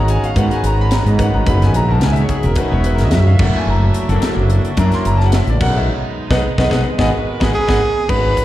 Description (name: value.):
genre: electric jazz fusion.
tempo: 109 BPM.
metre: 4/4.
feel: swing 53% on 16ths.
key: G# minor.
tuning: A4 = 441 Hz.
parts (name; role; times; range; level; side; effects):
bright concert grand piano; accompaniment; 0.0-8.4 s; D#3 to B#5; -19 LUFS; left 2 dB; slapback echo.
rich chamber string section; sustained chords; 0.0-8.4 s; F#3 to A#5; -26 LUFS; right 3 dB; none.
fretless electric bass; bass; 0.0-8.3 s; E1 to G#2; -15 LUFS; equal; lush chorus.
tight funk drum kit; drums; 0.1-8.4 s; crash cymbal, hi-hat, kick drum, snare drum; -21 LUFS; equal; none.
clear soprano saxophone; melody; 7.5-8.4 s; G#4 to B4; -16 LUFS; right 2 dB; slapback echo.
room: small room ambience.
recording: live gig heard through the venue's PA, recital hall reverb.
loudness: -13 LUFS.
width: side -14 dB against mid.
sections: 0.0-8.1 A section.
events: band accent 5.9-8.1; drum fill 7.0-8.1.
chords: 0.0 G#m9; 1.5 F#9sus4; 3.4 F#7alt; 5.6 B6; 7.0 G#m9.